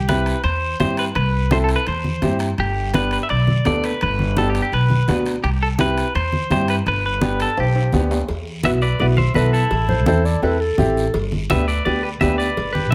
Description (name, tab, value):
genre	latin, cumbia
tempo	168 BPM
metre	4/4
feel	straight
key	G major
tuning	A4 = 440 Hz
part	clean electric guitar	melody	0.0-12.9 s	E4 to E5	-25 LUFS	equal	spring reverb, slapback echo
part	upright bass	bass	0.0-12.9 s	G1 to G2	-23 LUFS	equal	none
part	bright upright piano	accompaniment	0.1-12.9 s	B3 to A4	-24 LUFS	equal	none
part	congas	percussion	0.1-12.9 s	none	-26 LUFS	equal	none
part	guiro	percussion	0.1-12.9 s	none	-40 LUFS	equal	none
part	timbales and cowbell	percussion	0.1-12.8 s	none	-33 LUFS	equal	none
part	breathy clarinet	second line	9.9-11.3 s	A4 to D5	-25 LUFS	equal	none
room	light reverb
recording	close, detailed microphones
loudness	-19 LUFS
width	mono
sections	0.0-8.3 A section; 8.3-12.9 B section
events	drum fill 7.6-8.3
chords	0.0 C; 2.6 G; 5.4 C; 6.9 G; 8.3 Esus2; 9.7 Am; 11.1 G